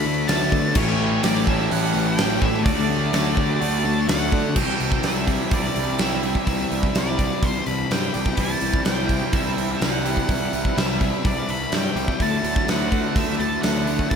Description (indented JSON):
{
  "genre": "rock, shoegaze and dream pop",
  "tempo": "126 BPM",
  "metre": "4/4",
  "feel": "straight",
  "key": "unclear",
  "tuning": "A4 = 440 Hz",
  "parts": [
    { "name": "octave-fuzz lead guitar", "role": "melody", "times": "0.0-14.2 s", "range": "C5 to B5", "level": "-28 LUFS", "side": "left 1 dB", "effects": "distortion, tape echo" },
    { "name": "shimmering ambient pad", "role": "sustained chords", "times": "0.0-14.2 s", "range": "E4 to C#6", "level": "-32 LUFS", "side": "equal", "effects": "chorus, built-in reverb" },
    { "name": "direct-recorded clean electric guitar", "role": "arpeggios", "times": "0.0-14.2 s", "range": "E3 to A4", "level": "-34 LUFS", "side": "right 10 dB", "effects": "none" },
    { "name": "biting overdriven guitar", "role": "riff", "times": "0.0-14.2 s", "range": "A2 to G4", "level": "-29 LUFS", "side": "right 13 dB", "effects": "reverse reverb" },
    { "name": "raw garage guitar", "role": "riff", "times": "0.0-4.6 s", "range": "A2 to D4", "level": "-29 LUFS", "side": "left 1 dB", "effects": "none" },
    { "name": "thick fuzz guitar", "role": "riff", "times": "0.0-14.2 s", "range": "A2 to D4", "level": "-27 LUFS", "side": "left 10 dB", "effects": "distortion, analog chorus" },
    { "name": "fuzz picked electric bass", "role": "bass", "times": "0.1-14.2 s", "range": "A1 to D3", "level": "-26 LUFS", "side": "equal", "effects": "overdrive" },
    { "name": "big rock drum kit", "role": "drums", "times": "0.3-14.2 s", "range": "crash cymbal, hi-hat, kick drum, snare drum", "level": "-24 LUFS", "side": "right 1 dB", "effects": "none" }
  ],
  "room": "light reverb, studio ambience",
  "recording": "none",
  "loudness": "-19 LUFS",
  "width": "side -7 dB against mid",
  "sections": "0.0-4.6 A section; 4.6-14.2 B section",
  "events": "none",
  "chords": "0.0 D69; 0.8 A7; 2.7 Dmaj7; 4.6 Cmaj9; 12.2 D69",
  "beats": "0.28 | 0.75 1.23 1.71 2.18 | 2.66 3.13 3.61 4.08 | 4.56 5.04 5.52 5.99 | 6.47 6.95 7.42 7.90 | 8.38 8.86 9.33 9.81 | 10.29 10.77 11.24 11.72 | 12.20 12.68 13.15 13.63 | 14.11"
}